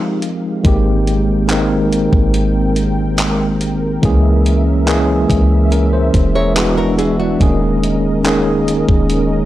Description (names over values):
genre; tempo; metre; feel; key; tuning
contemporary R&B; 71 BPM; 4/4; straight; Ab major; A4 = 440 Hz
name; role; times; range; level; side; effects
tine electric piano; accompaniment; 0.0-9.5 s; Eb3 to Fb5; -15 LUFS; equal; medium stereo tremolo
warm analog pad; sustained chords; 0.0-9.5 s; Ab3 to G5; -23 LUFS; right 1 dB; chorus
clean 12-bit digital drum machine; drums; 0.2-9.3 s; handclaps, hi-hat, kick drum; -18 LUFS; equal; none
clean 808-style bass; bass; 0.6-9.5 s; Eb1 to Db2; -17 LUFS; equal; none
flamenco guitar; arpeggios; 6.4-7.6 s; D4 to Db5; -21 LUFS; equal; analog delay
room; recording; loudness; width
little or no reverb; dry, gritty hardware recording, cassette tape; -12 LUFS; side -14 dB against mid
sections
0.0-9.5 A section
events
none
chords
0.0 Fm9; 0.6 Abmaj9; 4.0 Dbm6; 6.6 E9; 7.4 Eb7sus4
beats
| 0.65 1.49 2.34 3.18 | 4.03 4.87 5.72 6.56 | 7.41 8.25 9.10